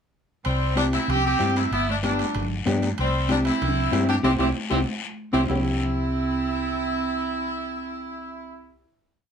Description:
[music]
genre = latin, cumbia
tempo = 190 BPM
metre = 4/4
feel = straight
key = C major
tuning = A4 = 440 Hz
[part]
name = timbales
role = percussion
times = 0.4-5.6 s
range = none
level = -36 LUFS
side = right 4 dB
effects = none
[part]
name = clear saxophone section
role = melody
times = 0.5-8.8 s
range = C4 to G4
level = -27 LUFS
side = equal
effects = none
[part]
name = breathy clarinet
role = second line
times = 0.5-8.8 s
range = G3 to D4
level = -30 LUFS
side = right 6 dB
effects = none
[part]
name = hollow-body short-scale fingered electric bass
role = bass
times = 0.5-8.8 s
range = G1 to G2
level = -27 LUFS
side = equal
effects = none
[part]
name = congas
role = percussion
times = 0.5-5.6 s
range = none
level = -33 LUFS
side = right 1 dB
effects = none
[part]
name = guiro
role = percussion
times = 0.5-5.6 s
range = none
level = -36 LUFS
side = left 7 dB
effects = none
[part]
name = mellow electric guitar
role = accompaniment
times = 0.8-8.8 s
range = B3 to G4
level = -26 LUFS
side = left 3 dB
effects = none
[sound]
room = moderate studio ambience, RT60 0.5 s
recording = none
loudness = -21 LUFS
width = side -7 dB against mid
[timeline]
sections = 0.5-5.5 A section; 5.5-8.0 final chord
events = band accent 4.2-5.5; drum fill 4.9-5.5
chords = 0.5 C; 1.7 G; 3.0 C

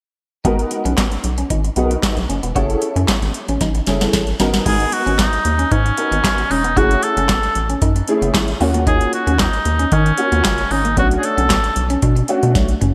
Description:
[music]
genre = early-eighties boogie funk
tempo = 114 BPM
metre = 4/4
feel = straight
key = G# minor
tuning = A4 = 441 Hz
[part]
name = warm grand piano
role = accompaniment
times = 0.4-12.7 s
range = A3 to A#4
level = -23 LUFS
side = equal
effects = ensemble chorus
[part]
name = rubbery square bass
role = bass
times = 0.4-12.9 s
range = E1 to D#3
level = -22 LUFS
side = equal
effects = none
[part]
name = booming analog drum machine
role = drums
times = 0.4-12.9 s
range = crash cymbal, handclaps, hi-hat, kick drum, snare drum, toms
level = -22 LUFS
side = equal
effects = overdrive, gated reverb
[part]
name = clean electric guitar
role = riff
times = 0.5-12.9 s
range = G#3 to F#4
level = -27 LUFS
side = equal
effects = subtle chorus
[part]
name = clear cor anglais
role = melody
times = 4.7-12.0 s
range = C#4 to A4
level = -21 LUFS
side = equal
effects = none
[sound]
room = moderate lush hall reverb, RT60 2.0 s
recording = bright 1980s-style digital production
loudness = -17 LUFS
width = mono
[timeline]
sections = 0.4-4.7 A section; 4.7-12.9 B section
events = drum fill 3.6-4.7, 12.6-12.9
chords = 0.4 G#m9; 2.6 F#m9; 4.4 G#m9; 6.8 F#m9; 8.6 D#m9; 11.0 Bm9

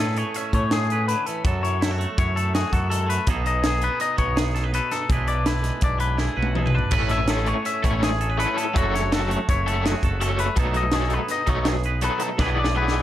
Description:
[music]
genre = math rock and midwest emo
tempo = 164 BPM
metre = 5/4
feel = straight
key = A major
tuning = A4 = 441 Hz
[part]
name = twangy electric guitar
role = accompaniment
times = 0.0-13.0 s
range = A2 to B4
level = -28 LUFS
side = right 5 dB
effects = none
[part]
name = twangy electric guitar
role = arpeggios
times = 0.0-13.0 s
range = F#4 to E5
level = -27 LUFS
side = left 6 dB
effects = digital delay
[part]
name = growling picked electric bass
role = bass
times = 0.0-13.0 s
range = F#1 to A2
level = -25 LUFS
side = equal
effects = overdrive
[part]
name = crisp fusion drum kit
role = drums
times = 0.2-13.0 s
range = crash cymbal, hi-hat, kick drum, snare drum, toms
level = -26 LUFS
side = equal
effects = none
[part]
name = raw garage guitar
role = riff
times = 6.9-13.0 s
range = E3 to A4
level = -26 LUFS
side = left 1 dB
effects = overdrive, tremolo
[sound]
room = light reverb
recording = dark, warm production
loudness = -20 LUFS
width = side -12 dB against mid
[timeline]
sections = 0.0-13.0 A section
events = drum fill 6.2-6.9, 12.4-13.0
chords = 0.0 Amaj9; 1.4 F#m7; 3.3 B13; 5.1 E7/B; 6.9 Amaj9; 8.8 F#m7; 10.6 B13; 12.4 E7/B

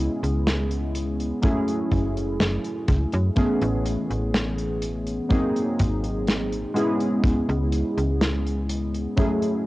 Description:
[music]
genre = vaporwave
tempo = 62 BPM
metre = 4/4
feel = straight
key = unclear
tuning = A4 = 440 Hz
[part]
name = warbly lo-fi synth keys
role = accompaniment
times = 0.0-9.7 s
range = E3 to G#4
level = -24 LUFS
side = equal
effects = wide subtle chorus, cassette tape, analog delay
[part]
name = slap-like FM bass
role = bass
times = 0.0-9.1 s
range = F#1 to F#2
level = -26 LUFS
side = equal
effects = transformer saturation
[part]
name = modern studio drum kit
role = drums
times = 0.2-9.6 s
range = hi-hat, snare drum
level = -27 LUFS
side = equal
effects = cassette tape
[part]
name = kick drum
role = drums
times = 1.4-9.4 s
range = none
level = -23 LUFS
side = equal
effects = cassette tape
[sound]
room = light reverb, small room ambience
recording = home recording on cassette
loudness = -21 LUFS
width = side -18 dB against mid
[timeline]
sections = 0.0-9.7 A section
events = none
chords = 0.0 C#m7; 1.4 F#m7; 3.4 Amaj9; 5.3 G#7; 6.8 C#m7

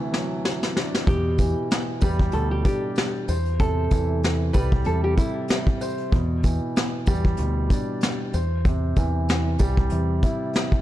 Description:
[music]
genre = hip hop, boom-bap hip-hop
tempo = 95 BPM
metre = 4/4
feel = swing 56% on 16ths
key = E minor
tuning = A4 = 439 Hz
[part]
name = dark baby grand piano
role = accompaniment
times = 0.0-10.8 s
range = D2 to C5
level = -27 LUFS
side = equal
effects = cassette tape, high-pass filter, low-pass filter
[part]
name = vintage brush drum kit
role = drums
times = 0.1-10.8 s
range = hi-hat, kick drum, snare drum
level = -23 LUFS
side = equal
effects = none
[part]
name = nylon-string guitar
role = melody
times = 1.1-5.5 s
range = E4 to B4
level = -29 LUFS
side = right 1 dB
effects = high-pass filter, low-pass filter, ping-pong delay
[part]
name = deep dub fingered electric bass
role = bass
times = 1.1-10.2 s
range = C2 to E2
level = -24 LUFS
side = equal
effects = none
[part]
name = tambourine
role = percussion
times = 1.4-10.4 s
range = none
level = -44 LUFS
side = right 5 dB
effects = none
[sound]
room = small room ambience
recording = dark, warm production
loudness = -20 LUFS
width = side -14 dB against mid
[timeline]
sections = 0.0-1.1 A section; 1.1-10.8 B section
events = break 0.0-1.1; drum fill 0.0-1.1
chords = 0.0 D9; 1.1 Em7; 3.3 C; 6.1 Em7; 8.3 C

